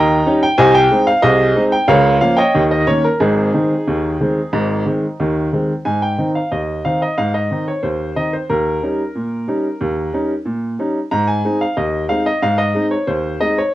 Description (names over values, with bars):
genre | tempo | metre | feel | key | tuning
ragtime piano | 91 BPM | 2/4 | straight | Ab major | A4 = 440 Hz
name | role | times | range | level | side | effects
clear upright piano | solo | 0.0-13.7 s | Ab1 to Bb5 | -14 LUFS | equal | cassette tape
room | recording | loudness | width
wet studio reverb, RT60 0.5 s | home recording on cassette | -14 LUFS | side -15 dB against mid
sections
0.0-5.9 A section; 5.9-13.7 B section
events
none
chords
0.0 Eb7; 0.6 Ab/C; 1.9 Bbm/Db; 2.5 Eb5; 3.2 Ab; 8.5 Eb7; 11.1 Ab